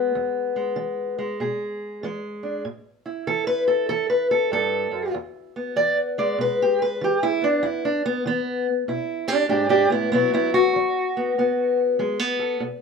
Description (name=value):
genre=acoustic country blues, solo or duo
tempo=96 BPM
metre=4/4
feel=swing 64% on 8ths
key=E mixolydian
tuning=A4 = 440 Hz
part: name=fingerpicked steel-string acoustic guitar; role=solo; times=0.0-12.8 s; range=E2 to D5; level=-20 LUFS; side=equal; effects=none
room=moderate studio reverb, RT60 0.7 s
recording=minimal, uncompressed stereo recording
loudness=-20 LUFS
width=side -5 dB against mid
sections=0.0-12.8 A section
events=steel-string acoustic guitar solo 0.0-12.8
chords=0.0 E; 2.6 A5; 5.1 E7; 10.1 B5